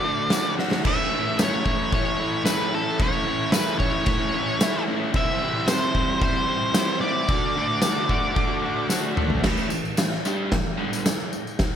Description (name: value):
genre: garage rock duo or trio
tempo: 112 BPM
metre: 4/4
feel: straight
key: A mixolydian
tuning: A4 = 439 Hz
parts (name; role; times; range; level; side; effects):
- octave-fuzz lead guitar; melody; 0.0-8.9 s; A4 to E5; -26 LUFS; equal; distortion
- combo organ; sustained chords; 0.0-9.4 s; E4 to D5; -35 LUFS; left 1 dB; none
- crunchy overdriven guitar; riff; 0.0-11.1 s; G2 to G4; -26 LUFS; equal; none
- oversized low-tuned drum kit; drums; 0.3-11.7 s; crash cymbal, kick drum, snare drum, toms; -24 LUFS; equal; none
- tambourine; percussion; 0.3-11.7 s; none; -33 LUFS; left 6 dB; none
room: light reverb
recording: none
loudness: -21 LUFS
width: side -9 dB against mid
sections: 0.0-9.4 A section; 9.4-11.8 B section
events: drum fill 0.6, 8.9-9.4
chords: 0.0 D; 0.9 A; 5.1 C; 7.3 D; 9.4 A5